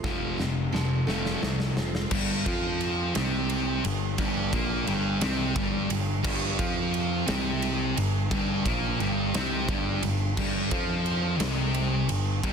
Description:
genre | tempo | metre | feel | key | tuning
quiet-loud alternative rock | 58 BPM (dotted quarters) | 6/8 | straight | unclear | A4 = 440 Hz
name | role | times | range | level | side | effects
picked steel-string acoustic guitar | arpeggios | 0.0-2.1 s | F2 to A3 | -36 LUFS | right 6 dB | analog delay
thick fuzz guitar | riff | 0.0-12.5 s | F2 to F4 | -27 LUFS | equal | distortion
picked electric bass | bass | 0.0-12.5 s | F1 to F2 | -32 LUFS | equal | none
big rock drum kit | drums | 0.0-12.5 s | crash cymbal, kick drum, ride cymbal, snare drum | -30 LUFS | equal | none
room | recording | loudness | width
light reverb | dense, heavily limited modern master | -24 LUFS | side -6 dB against mid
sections
0.0-2.1 A section; 2.1-12.5 B section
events
drum fill 0.1-2.1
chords
0.0 F; 2.1 Gmadd11

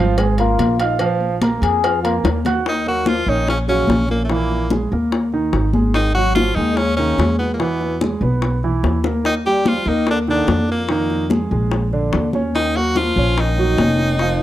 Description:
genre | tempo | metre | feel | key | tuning
Afro-Cuban jazz | 146 BPM | 4/4 | straight | Eb minor | A4 = 440 Hz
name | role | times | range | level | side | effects
warm concert grand piano | accompaniment | 0.0-14.4 s | D3 to Gb6 | -22 LUFS | right 4 dB | none
upright bass | bass | 0.0-14.4 s | F1 to F2 | -20 LUFS | equal | none
congas | percussion | 0.2-14.4 s | none | -24 LUFS | left 1 dB | none
cowbell and bongos | percussion | 0.2-14.4 s | none | -24 LUFS | left 4 dB | none
trombone with cup mute | second line | 0.4-14.4 s | A2 to Ab4 | -25 LUFS | left 7 dB | none
edgy tenor saxophone | melody | 2.7-14.4 s | A3 to G4 | -20 LUFS | equal | slapback echo
room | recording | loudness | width
small room ambience | dry, close 1970s-style studio recording | -15 LUFS | side -13 dB against mid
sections
0.0-2.7 A section; 2.7-14.4 B section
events
trombone solo 0.0-2.7; drum fill 2.2-2.7, 9.0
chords
0.0 Db6 (rootless); 1.0 Bb5; 2.7 Ebm7; 4.3 Emaj7#11/A#; 5.1 Eb5; 6.0 Ab5; 7.6 E; 9.2 Ebmaj7; 10.9 Fm7; 11.7 Bb7; 12.5 Ebm9

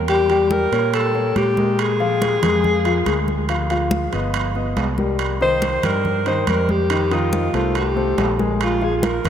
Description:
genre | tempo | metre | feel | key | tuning
Afro-Cuban jazz | 141 BPM | 4/4 | straight | Bb mixolydian | A4 = 440 Hz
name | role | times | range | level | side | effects
breathy alto saxophone | melody | 0.0-9.3 s | F4 to C5 | -21 LUFS | left 1 dB | none
fingered electric bass | bass | 0.0-9.3 s | G1 to Bb2 | -24 LUFS | right 1 dB | none
warm concert grand piano | accompaniment | 0.1-9.3 s | Eb3 to G5 | -22 LUFS | left 3 dB | none
congas | percussion | 0.1-9.3 s | none | -27 LUFS | equal | none
timbales | percussion | 0.1-9.3 s | none | -27 LUFS | right 7 dB | none
room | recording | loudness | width
wet cathedral reverb, RT60 6.7 s | in a vast, echoing space | -17 LUFS | side -9 dB against mid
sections
0.0-9.3 A section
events
none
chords
0.1 Edim7; 1.8 Bb7; 3.5 Dm; 4.3 Gaug; 5.2 Cm7; 6.9 F9; 8.6 Bb5

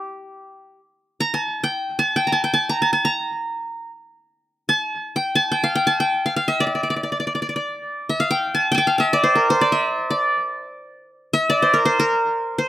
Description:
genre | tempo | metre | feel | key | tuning
Turkish makam ensemble | free time | none | none | G makam huseyni | A4 = 438 Hz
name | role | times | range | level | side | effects
qanun | solo | 0.0-12.7 s | G4 to Bb5 | -18 LUFS | equal | none
room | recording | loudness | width
little or no reverb | recorded outdoors, with no room sound | -18 LUFS | side -13 dB against mid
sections
0.9-12.7 A section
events
none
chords
none

